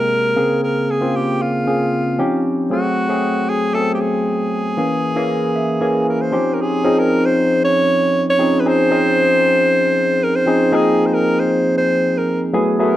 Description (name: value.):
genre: pop.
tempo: 116 BPM.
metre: 4/4.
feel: straight.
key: unclear.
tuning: A4 = 440 Hz.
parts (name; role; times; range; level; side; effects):
breathy alto saxophone; melody; 0.0-13.0 s; F4 to Db5; -18 LUFS; equal; slapback echo.
barky tine electric piano; accompaniment; 0.0-13.0 s; C3 to C6; -17 LUFS; equal; overdrive, lush chorus.
room: small room ambience.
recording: dry, close 1970s-style studio recording.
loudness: -14 LUFS.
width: side -13 dB against mid.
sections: 0.0-6.8 A section; 6.8-13.0 B section.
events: tine electric piano fill 5.3-6.8.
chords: 0.4 Bbm9; 2.2 Eb13; 2.7 Ab7b9; 4.8 Dbm6; 6.3 Eb13; 6.8 Dbmaj9; 10.7 Ab69.